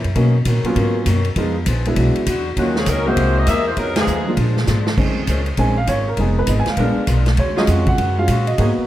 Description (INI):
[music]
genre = jazz, big band swing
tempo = 199 BPM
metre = 4/4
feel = swing 63% on 8ths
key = Bb minor from 5.0 s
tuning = A4 = 440 Hz
[part]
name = warm saxophone section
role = melody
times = 0.0, 2.6-4.3 s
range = Eb3 to E5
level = -21 LUFS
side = left 1 dB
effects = none
[part]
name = picked steel-string acoustic guitar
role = accompaniment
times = 0.0-8.8 s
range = Bb2 to Cb5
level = -26 LUFS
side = left 4 dB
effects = none
[part]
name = upright bass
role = bass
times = 0.0-8.8 s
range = F1 to B2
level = -19 LUFS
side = equal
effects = none
[part]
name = swinging big-band drum kit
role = drums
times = 0.0-8.7 s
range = crash cymbal, hi-hat, kick drum, ride cymbal, snare drum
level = -24 LUFS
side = equal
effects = none
[part]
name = warm grand piano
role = accompaniment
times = 0.2-8.9 s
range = F3 to Ab5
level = -21 LUFS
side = right 1 dB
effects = none
[part]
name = bright saxophone section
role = sustained chords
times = 5.3-8.7 s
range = Gb3 to C5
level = -28 LUFS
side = equal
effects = none
[sound]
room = moderate recital hall reverb, RT60 1.5 s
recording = none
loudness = -15 LUFS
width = side -14 dB against mid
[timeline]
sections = 0.0-5.0 A section; 5.0-8.9 B section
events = band accent 3.9; drum fill 4.7-5.0; grand piano solo 5.0-8.9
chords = 0.2 Bmaj9; 1.4 Fm7b5; 2.0 E9; 2.6 Ebm7; 3.2 C7alt; 3.8 Fm7b5; 4.4 Bb7; 5.0 Bbm11; 6.2 Fm7b5; 6.8 Bb7b9; 7.4 Ebm11